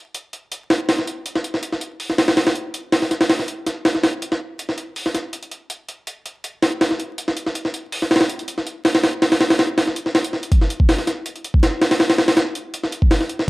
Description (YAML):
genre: drum and bass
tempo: 162 BPM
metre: 4/4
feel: straight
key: none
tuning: none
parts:
  - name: jungle sampler-style drum kit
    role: drums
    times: 0.1-13.5 s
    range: hi-hat, kick drum, snare drum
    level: -17 LUFS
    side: equal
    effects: overdrive, studio reverb
room: moderate digital room reverb, RT60 1.2 s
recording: dry, gritty hardware recording, vinyl crackle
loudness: -17 LUFS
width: side -21 dB against mid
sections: 0.0-10.5 A section; 10.5-13.5 B section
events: drop 10.5-13.5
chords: none